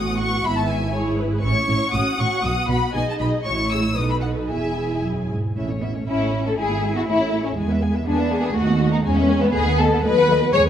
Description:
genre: quick classical-period movement for string orchestra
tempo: 120 BPM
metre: 2/4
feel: rubato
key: E major, A major from 5.6 s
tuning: A4 = 437 Hz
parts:
  - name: warm symphonic violin section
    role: melody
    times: 0.0-10.7 s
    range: C#5 to E6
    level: -27 LUFS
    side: left 3 dB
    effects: none
  - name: warm studio violin section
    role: second line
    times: 0.0-10.6 s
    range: B3 to G#5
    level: -23 LUFS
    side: left 3 dB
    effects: none
  - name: warm symphonic viola section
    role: accompaniment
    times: 0.0-10.7 s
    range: G#3 to B4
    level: -26 LUFS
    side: equal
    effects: none
  - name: rich symphonic cello section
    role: bass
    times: 0.0-10.7 s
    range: E2 to E4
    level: -25 LUFS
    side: right 2 dB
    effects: none
  - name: warm symphonic double bass section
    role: bass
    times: 0.0-10.7 s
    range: E1 to E2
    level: -25 LUFS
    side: right 2 dB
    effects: none
room: moderate scoring stage reverb, RT60 2.1 s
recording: close, detailed microphones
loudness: -18 LUFS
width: side -9 dB against mid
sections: 0.0-5.6 A section; 5.6-10.7 B section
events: none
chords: 0.5 E/G#; 1.4 A; 1.9 F#m; 2.4 B; 3.0 G#m/B; 3.5 F#m7/A; 4.0 B7; 4.5 E; 5.6 A; 6.6 E/G#; 7.1 A; 7.6 E; 8.5 B/D#; 9.0 E; 9.5 B7/D#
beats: | 0.46 0.94 | 1.44 1.94 | 2.44 2.95 | 3.46 3.97 | 4.50 5.03 | 5.56 6.07 | 6.57 7.07 | 7.56 8.05 | 8.55 9.04 | 9.54 10.03 | 10.53

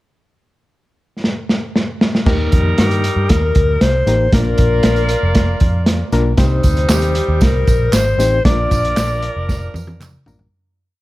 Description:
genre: uptempo 1960s-style soul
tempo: 116 BPM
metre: 4/4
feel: straight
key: Eb major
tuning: A4 = 439 Hz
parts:
  - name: vintage drum kit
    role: drums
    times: 1.2-10.5 s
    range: crash cymbal, hi-hat, kick drum, snare drum, toms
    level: -16 LUFS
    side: equal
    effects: none
  - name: bright saxophone section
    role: second line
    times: 2.3-10.2 s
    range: F3 to D5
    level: -24 LUFS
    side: right 2 dB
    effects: none
  - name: barky reed electric piano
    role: accompaniment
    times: 2.3-10.5 s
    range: Bb2 to C5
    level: -22 LUFS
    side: left 3 dB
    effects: overdrive, fast tremolo
  - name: vintage muted picked electric bass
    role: bass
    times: 2.3-10.5 s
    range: F1 to G2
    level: -17 LUFS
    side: equal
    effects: none
  - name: warm alto saxophone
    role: melody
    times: 2.8-10.0 s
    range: G4 to D5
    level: -19 LUFS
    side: left 3 dB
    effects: none
  - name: tambourine and handclaps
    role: percussion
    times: 6.4-10.4 s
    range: none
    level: -29 LUFS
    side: right 3 dB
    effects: none
room: small room ambience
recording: none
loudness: -13 LUFS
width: side -18 dB against mid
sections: 0.2-2.3 pickup bar; 2.3-10.5 verse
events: drum fill 1.2-2.3, 9.5-10.5; fade-out 8.5-10.5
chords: 0.2 N.C.; 2.3 Eb; 4.3 Bb; 6.4 Cm; 8.5 Bb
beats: | 0.19 0.70 1.22 1.74 | 2.26 2.78 3.29 3.81 | 4.33 4.84 5.36 5.87 | 6.39 6.91 7.42 7.94 | 8.46 8.97 9.49 10.01

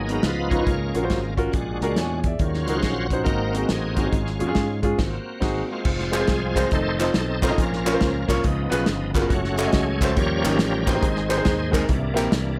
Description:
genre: uptempo gospel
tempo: 139 BPM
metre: 4/4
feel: swing 65% on 8ths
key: Db major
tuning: A4 = 440 Hz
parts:
  - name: warm grand piano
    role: accompaniment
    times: 0.0-12.6 s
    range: Ab2 to Bb5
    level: -28 LUFS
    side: equal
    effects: none
  - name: bright tonewheel organ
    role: sustained chords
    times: 0.0-12.6 s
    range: Eb3 to Db5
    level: -30 LUFS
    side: equal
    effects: slow rotary speaker, overdrive, chorus vibrato
  - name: fingered electric bass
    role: bass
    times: 0.0-12.6 s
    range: F1 to Ab2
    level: -30 LUFS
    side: equal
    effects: none
  - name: warm soul drum kit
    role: drums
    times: 0.1-12.5 s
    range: crash cymbal, hi-hat, kick drum, snare drum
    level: -27 LUFS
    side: equal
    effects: none
  - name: group handclap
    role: percussion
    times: 6.1-12.2 s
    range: none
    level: -35 LUFS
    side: equal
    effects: none
room: light reverb, studio reverb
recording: none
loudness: -23 LUFS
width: mono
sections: 0.0-5.9 A section; 5.9-12.6 B section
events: tonewheel organ solo 0.0-5.9, 5.9-12.6; grand piano fill 1.5-2.4; band accent 5.0-5.9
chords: 0.2 Db9; 0.7 Gbmaj7; 1.5 Bb7alt; 2.4 Ebm7; 3.3 Ab7; 4.1 Db/Ab; 5.0 Ab7; 5.9 Fm; 6.7 F7; 7.6 Bbm; 8.4 Db7; 9.3 Gbm; 10.2 Eb7; 11.0 Ab; 11.9 C7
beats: 0.24 | 0.68 1.11 1.54 1.97 | 2.40 2.83 3.26 3.69 | 4.13 4.56 4.99 5.42 | 5.85 6.28 6.72 7.15 | 7.58 8.01 8.44 8.87 | 9.30 9.73 10.17 10.60 | 11.03 11.46 11.89 12.33

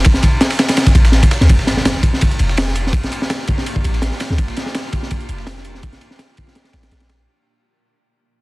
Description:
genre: drum and bass, jungle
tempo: 166 BPM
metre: 4/4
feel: swing 54% on 16ths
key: G minor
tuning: A4 = 439 Hz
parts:
  - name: warm 808-style bass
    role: bass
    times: 0.0-7.3 s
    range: F1 to D2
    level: -15 LUFS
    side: equal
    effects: none
  - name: crunchy breakbeat drum kit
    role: drums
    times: 0.0-7.2 s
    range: kick drum, ride cymbal, snare drum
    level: -15 LUFS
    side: equal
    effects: none
  - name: dusty soul sampler-style drum kit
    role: drums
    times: 0.0-7.2 s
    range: hi-hat, snare drum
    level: -26 LUFS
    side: right 1 dB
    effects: high-pass filter on snare, high-pass filter on hats
  - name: impact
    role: sound effects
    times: 1.6-2.9 s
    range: none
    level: -26 LUFS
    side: equal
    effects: none
room: studio reverb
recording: dense, heavily limited modern master, vinyl crackle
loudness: -13 LUFS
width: side -23 dB against mid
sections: 0.0-1.5 A section; 1.5-7.3 B section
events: drop 0.0-1.5; fade-out 1.5-7.3; impact 1.5-2.9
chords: none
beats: | 0.05 0.41 0.77 1.13 | 1.49 1.85 2.21 2.58 | 2.94 3.30 3.66 4.02 | 4.38 4.75 5.11 5.47 | 5.83 6.19 6.55 6.91

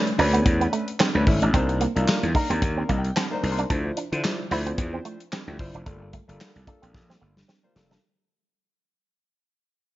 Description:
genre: early-eighties boogie funk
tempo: 111 BPM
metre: 4/4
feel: swing 56% on 16ths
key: unclear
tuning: A4 = 436 Hz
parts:
  - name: warm concert grand piano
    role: accompaniment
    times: 0.0-8.0 s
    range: F3 to C6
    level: -28 LUFS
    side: left 2 dB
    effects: none
  - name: modern studio drum kit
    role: drums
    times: 0.1-8.0 s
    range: handclaps, hi-hat, kick drum, snare drum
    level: -25 LUFS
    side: equal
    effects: gated reverb
  - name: electric guitar with an envelope filter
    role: riff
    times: 0.2-8.0 s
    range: A3 to E4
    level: -28 LUFS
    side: right 5 dB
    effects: lush chorus
  - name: gritty slap bass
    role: bass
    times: 0.2-8.0 s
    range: F1 to D3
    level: -24 LUFS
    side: equal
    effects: overdrive
room: little or no reverb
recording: nothing above 7.5 kHz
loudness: -21 LUFS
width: side -15 dB against mid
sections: 0.0-8.0 A section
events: fade-out 0.0-8.0; grand piano fill 2.6-3.7; drum fill 6.9-8.0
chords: 0.0 Bm9; 1.5 Cm9; 3.7 Dm9; 5.9 Gm9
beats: 0.46 1.00 | 1.54 2.08 2.62 3.16 | 3.70 4.24 4.78 5.32 | 5.86 6.40 6.94 7.48

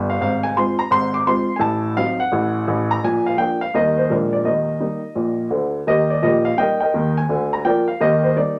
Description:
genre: jazz, stride piano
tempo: 169 BPM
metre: 4/4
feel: swing 64% on 8ths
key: Eb major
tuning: A4 = 438 Hz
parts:
  - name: warm upright piano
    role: solo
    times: 0.0-8.6 s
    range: G1 to D6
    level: -19 LUFS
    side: equal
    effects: none
room: wet club reverb, RT60 0.6 s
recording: none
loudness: -19 LUFS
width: mono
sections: 0.0-5.9 A section; 5.9-8.6 B section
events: none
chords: 0.2 Fm/Ab; 1.6 Adim7; 3.0 Bb; 3.8 Eb; 4.1 Bb7; 4.5 Eb; 7.3 Bb/D; 8.0 Eb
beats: | 0.20 0.56 0.91 1.27 | 1.62 1.98 2.33 2.69 | 3.04 3.40 3.75 4.11 | 4.46 4.82 5.17 5.52 | 5.88 6.23 6.58 6.94 | 7.29 7.65 8.00 8.35

